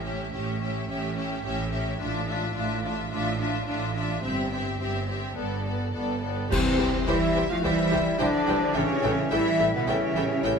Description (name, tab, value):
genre	cinematic, heroic adventure film score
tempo	107 BPM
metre	4/4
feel	straight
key	C major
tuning	A4 = 440 Hz
part	warm symphonic violin section	melody	0.0-10.6 s	B4 to F5	-35 LUFS	left 3 dB	none
part	warm symphonic violin section	second line	0.0-10.5 s	F4 to G5	-34 LUFS	left 2 dB	none
part	rich symphonic viola section	accompaniment	0.0-10.5 s	E3 to A4	-32 LUFS	equal	none
part	bright symphonic cello section	bass	0.0-10.6 s	G2 to F3	-32 LUFS	right 3 dB	none
part	rich symphonic double bass section	bass	0.0-10.5 s	G1 to C2	-33 LUFS	right 3 dB	none
part	cymbal swell, clash cymbals and concert bass drum	percussion	4.2-7.6 s	none	-32 LUFS	left 1 dB	none
part	mellow clarinet	second line	6.5-10.6 s	D3 to A3	-34 LUFS	left 3 dB	none
part	dark trombone section	sustained chords	6.5-10.6 s	G3 to E4	-33 LUFS	right 4 dB	none
part	mellow French horn section	sustained chords	6.5-10.6 s	B3 to F4	-28 LUFS	left 4 dB	none
part	mellow trumpet	stabs	6.5-10.6 s	B3 to F4	-30 LUFS	right 1 dB	none
part	mellow hollow silver concert flute	second line	7.6-10.6 s	C5 to E5	-33 LUFS	left 2 dB	none
room	wet scoring stage reverb, RT60 2.0 s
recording	none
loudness	-24 LUFS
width	side -6 dB against mid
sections	0.0-6.5 A section; 6.5-10.6 B section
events	band accent 6.5-7.1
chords	0.0 A7; 2.0 Dmadd9/A; 4.2 C/G; 5.4 Gadd9; 6.5 C; 8.8 A7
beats	0.34 0.89 1.45 | 2.00 2.56 3.12 3.68 | 4.24 4.80 5.38 5.95 | 6.52 7.08 7.64 8.20 | 8.76 9.32 9.88 10.43